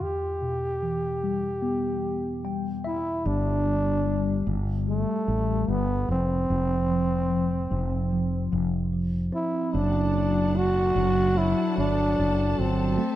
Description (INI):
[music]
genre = pop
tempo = 74 BPM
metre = 4/4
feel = straight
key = unclear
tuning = A4 = 440 Hz
[part]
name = growling trombone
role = melody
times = 0.0-13.2 s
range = A3 to G4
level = -27 LUFS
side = equal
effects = none
[part]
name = tine electric piano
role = accompaniment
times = 0.0-13.2 s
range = E2 to G5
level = -28 LUFS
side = left 1 dB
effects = phaser
[part]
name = fretless electric bass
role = bass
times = 3.3-13.0 s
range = F1 to A1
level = -27 LUFS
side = equal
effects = wide subtle chorus
[part]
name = clear studio string section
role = sustained chords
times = 9.7-13.2 s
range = C4 to A5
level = -37 LUFS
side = left 2 dB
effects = none
[part]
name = swell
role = sound effects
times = 13.1-13.2 s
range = none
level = barely audible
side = none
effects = none
[sound]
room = light reverb, studio reverb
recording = rough home demo mix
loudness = -23 LUFS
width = side -13 dB against mid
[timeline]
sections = 0.0-3.3 A section; 3.3-13.2 B section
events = tine electric piano fill 2.0-3.3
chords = 0.0 Em; 3.3 Gsus2; 6.1 F5; 9.7 D/F#